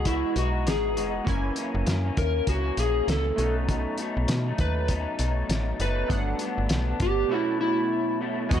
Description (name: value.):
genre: indie pop, bedroom pop.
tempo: 99 BPM.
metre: 4/4.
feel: swing 60% on 16ths.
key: unclear.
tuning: A4 = 440 Hz.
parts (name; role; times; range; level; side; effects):
electric slide guitar; melody; 0.0-8.2 s; E4 to B4; -28 LUFS; equal; wide subtle chorus, digital delay.
chorused retro synth keys; accompaniment; 0.0-8.6 s; B2 to G#5; -34 LUFS; right 3 dB; none.
electric guitar through a small old amp; accompaniment; 0.0-8.6 s; F#2 to F#4; -32 LUFS; left 4 dB; ensemble chorus, warbly pitch drift.
slap-like FM bass; bass; 0.0-8.6 s; F1 to B2; -27 LUFS; equal; none.
cloth-damped thuddy drum kit; drums; 0.1-8.6 s; hi-hat, kick drum, snare drum; -29 LUFS; equal; none.
room: light reverb, studio ambience.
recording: dark, warm production.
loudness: -23 LUFS.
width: side -9 dB against mid.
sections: 0.0-8.5 A section.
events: none.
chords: 0.0 Emaj9; 1.3 F#7; 3.4 B7; 6.1 Gmaj7; 7.3 B7sus4.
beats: 0.06 0.67 | 1.27 1.88 2.48 3.08 | 3.69 4.29 4.89 5.50 | 6.10 6.71 7.31 7.91 | 8.51.